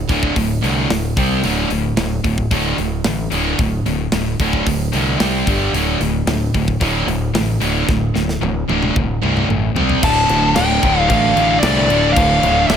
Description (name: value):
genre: heavy metal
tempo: 112 BPM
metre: 4/4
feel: straight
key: D minor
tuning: A4 = 440 Hz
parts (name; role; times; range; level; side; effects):
- high-gain distorted guitar; riff; 0.0-12.8 s; D2 to C4; -21 LUFS; left 10 dB; distortion
- sludgy distorted guitar; riff; 0.0-12.8 s; D2 to C4; -20 LUFS; right 11 dB; overdrive
- growling fingered electric bass; bass; 0.0-12.8 s; D1 to C2; -21 LUFS; equal; overdrive
- tight metal drum kit; drums; 0.1-12.8 s; crash cymbal, hi-hat, kick drum, snare drum, toms; -22 LUFS; equal; none
- high-gain lead guitar; melody; 10.0-12.8 s; D5 to A5; -16 LUFS; left 1 dB; distortion
- rich studio string section; sustained chords; 10.0-12.8 s; F3 to D5; -29 LUFS; left 1 dB; none
- sludgy distorted guitar; riff; 10.0-12.8 s; D2 to D3; -22 LUFS; left 1 dB; overdrive
room: light reverb, studio ambience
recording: none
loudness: -14 LUFS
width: side -8 dB against mid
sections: 0.0-10.0 A section; 10.0-12.8 B section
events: drum fill 7.9-10.0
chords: 0.0 D5; 1.2 C5; 1.4 D5; 5.2 C5; 5.5 G5; 5.7 D5; 9.8 C5; 10.0 Dm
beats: 0.36 0.90 | 1.43 1.97 2.51 3.05 | 3.58 4.12 4.66 5.20 | 5.73 6.27 6.81 7.34 | 7.88 8.42 8.95 9.49 | 10.02 10.56 11.09 11.62 | 12.16 12.69